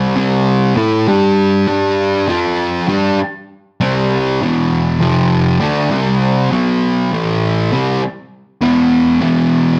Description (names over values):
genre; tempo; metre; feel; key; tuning
metal; 99 BPM; 4/4; straight; unclear; A4 = 440 Hz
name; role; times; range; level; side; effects
fuzz guitar; solo; 0.0-9.8 s; E2 to A4; -14 LUFS; equal; distortion
room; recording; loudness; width
moderate large studio reverb, RT60 1.1 s; none; -15 LUFS; mono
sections
0.0-9.8 A section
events
none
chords
0.0 C5; 1.1 G5; 2.3 F5; 2.9 C5; 4.4 E5; 5.0 F5; 5.6 D5; 5.9 C5; 6.5 B5; 7.1 A5; 7.7 Em